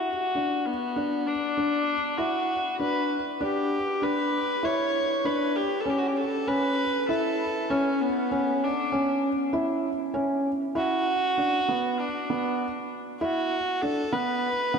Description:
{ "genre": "electronica", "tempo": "98 BPM", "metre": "4/4", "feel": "straight", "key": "B minor", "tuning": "A4 = 439 Hz", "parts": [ { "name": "warm viola", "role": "melody", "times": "0.0-14.8 s", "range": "B3 to C#5", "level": "-27 LUFS", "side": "equal", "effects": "low-pass filter" }, { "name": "felt-muted upright piano", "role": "riff", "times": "0.0-14.8 s", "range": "B3 to E4", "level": "-27 LUFS", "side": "equal", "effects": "none" } ], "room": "wet huge ambient reverb, RT60 4.5 s", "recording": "none", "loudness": "-24 LUFS", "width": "side -6 dB against mid", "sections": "0.0-10.8 A section; 10.8-14.8 B section", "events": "build-up 0.0-10.8; drop 10.8-14.8", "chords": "0.0 D6; 5.9 A (rootless); 10.8 Bm" }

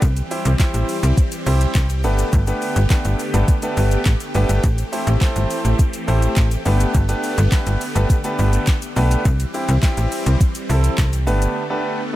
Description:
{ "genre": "dance-pop", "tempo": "104 BPM", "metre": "4/4", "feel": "straight", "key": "unclear", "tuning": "A4 = 444 Hz", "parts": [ { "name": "warm concert grand piano", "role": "accompaniment", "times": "0.0-12.2 s", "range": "A3 to C5", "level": "-24 LUFS", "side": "right 1 dB", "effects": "sidechain pumping" }, { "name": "supersaw chords", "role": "sustained chords", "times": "0.0-12.2 s", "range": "D3 to G4", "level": "-27 LUFS", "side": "left 1 dB", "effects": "phaser, sidechain pumping" }, { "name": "slap-like FM bass", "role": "bass", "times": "0.0-11.5 s", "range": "G1 to C2", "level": "-17 LUFS", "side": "equal", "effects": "sidechain pumping" }, { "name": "smooth R&B drum kit", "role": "drums", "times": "0.0-11.6 s", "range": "handclaps, hi-hat, kick drum, shaker, snare drum", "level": "-19 LUFS", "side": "equal", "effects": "none" }, { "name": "egg shaker", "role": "percussion", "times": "0.0-11.6 s", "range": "none", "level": "-41 LUFS", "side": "left 7 dB", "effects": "none" } ], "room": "digital ambience", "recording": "none", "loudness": "-16 LUFS", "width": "side -15 dB against mid", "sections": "0.0-12.2 A section", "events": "break 11.6-12.2", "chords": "0.0 C; 2.0 Gadd9; 4.6 Am7; 6.7 Gadd9; 9.3 C; 11.3 Gadd9" }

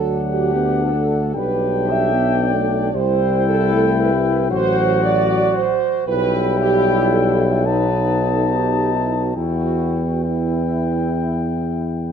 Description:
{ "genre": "classical, hymn-like piece for brass band", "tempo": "68-78 BPM", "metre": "4/4", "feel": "rubato", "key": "E minor", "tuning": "A4 = 441 Hz", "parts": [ { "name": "mellow flugelhorn", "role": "melody", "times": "0.0-12.1 s", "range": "F#5 to A5", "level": "-24 LUFS", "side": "left 10 dB", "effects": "none" }, { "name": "warm French horn section", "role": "second line", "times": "0.0-12.0 s", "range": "E4 to E5", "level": "-22 LUFS", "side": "right 7 dB", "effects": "none" }, { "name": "clear trombone section", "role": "accompaniment", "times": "0.0-12.1 s", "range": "D4 to F#4", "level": "-26 LUFS", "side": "left 5 dB", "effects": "none" }, { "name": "mellow euphonium", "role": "accompaniment", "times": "0.0-12.1 s", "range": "F#3 to B3", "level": "-24 LUFS", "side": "right 2 dB", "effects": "none" }, { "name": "warm tuba", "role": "bass", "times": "0.0-12.1 s", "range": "A1 to E2", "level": "-20 LUFS", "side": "equal", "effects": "none" } ], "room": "light reverb", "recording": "close, detailed microphones", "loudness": "-16 LUFS", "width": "side -7 dB against mid", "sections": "0.0-12.1 A section", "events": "none", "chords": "0.0 D; 1.3 G/B; 2.9 C; 4.5 Am6; 6.1 Em/B; 7.7 B7; 9.4 Em" }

